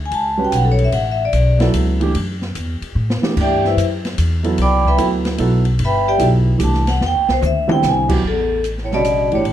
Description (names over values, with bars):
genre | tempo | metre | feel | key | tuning
modal jazz | 148 BPM | 3/4 | swing 66% on 8ths | D mixolydian | A4 = 439 Hz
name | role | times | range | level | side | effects
upright bass | bass | 0.0-9.5 s | G1 to A2 | -18 LUFS | equal | none
vibraphone with medium hard mallets | melody | 0.1-9.5 s | E4 to D6 | -18 LUFS | left 1 dB | none
open jazz drum kit | drums | 0.1-9.5 s | crash cymbal, hi-hat, kick drum, ride cymbal, snare drum, toms | -25 LUFS | left 1 dB | none
dark baby grand piano | accompaniment | 0.4-9.4 s | C#3 to B4 | -20 LUFS | right 3 dB | none
breathy bass clarinet | second line | 8.2-9.5 s | E2 to B2 | -23 LUFS | right 7 dB | none
room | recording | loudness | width
light reverb | dark, warm production | -14 LUFS | side -11 dB against mid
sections
0.0-8.2 A section; 8.2-9.5 B section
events
vibraphone solo 0.0-8.2; drum fill 3.0-3.4, 7.0-7.8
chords
0.0 Dmaj9 (rootless); 3.4 Cmaj9; 7.0 Em7; 8.2 A9sus4